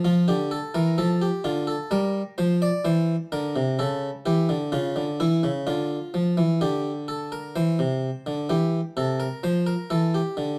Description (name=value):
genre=classical, baroque-style two-part invention for harpsichord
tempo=64 BPM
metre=4/4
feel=straight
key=D minor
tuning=A4 = 441 Hz
part: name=harpsichord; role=solo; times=0.0-10.6 s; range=C3 to D5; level=-24 LUFS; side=equal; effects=none
room=moderate studio reverb, RT60 0.8 s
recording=dark, warm production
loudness=-25 LUFS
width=mono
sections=0.0-7.6 A section; 7.6-10.6 B section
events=none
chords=0.0 Dm; 1.9 Gm; 3.8 A7/C#; 5.7 Dm; 7.6 C; 9.4 Fmaj7